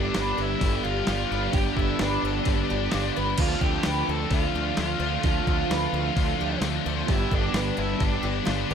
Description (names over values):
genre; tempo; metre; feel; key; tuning
rock, shoegaze and dream pop; 130 BPM; 4/4; straight; G mixolydian; A4 = 440 Hz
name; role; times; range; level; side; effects
octave-fuzz lead guitar; melody; 0.0-8.7 s; D4 to A4; -31 LUFS; right 1 dB; distortion, analog delay
string machine, cellos; sustained chords; 0.0-8.7 s; F4 to C6; -37 LUFS; left 1 dB; ensemble chorus
picked twelve-string acoustic guitar; arpeggios; 0.0-8.7 s; F4 to C5; -34 LUFS; left 1 dB; analog chorus, analog delay
biting overdriven guitar; riff; 0.0-8.7 s; G2 to D4; -30 LUFS; left 13 dB; analog chorus
electric guitar through a small old amp; riff; 0.0-8.7 s; G2 to A4; -31 LUFS; right 12 dB; reverse reverb
growling fingered electric bass; bass; 0.0-8.7 s; G1 to D2; -30 LUFS; equal; overdrive
detuned 8-bit digital drum machine; drums; 0.1-8.6 s; crash cymbal, hi-hat, kick drum, snare drum; -27 LUFS; equal; none
room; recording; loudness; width
little or no reverb; none; -22 LUFS; side -7 dB against mid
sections
0.0-8.7 A section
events
none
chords
0.0 G; 3.4 Dm7; 7.1 G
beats
0.15 0.61 1.07 | 1.54 2.00 2.46 2.92 | 3.39 3.85 4.31 4.77 | 5.24 5.70 6.16 6.62 | 7.08 7.54 8.01 8.47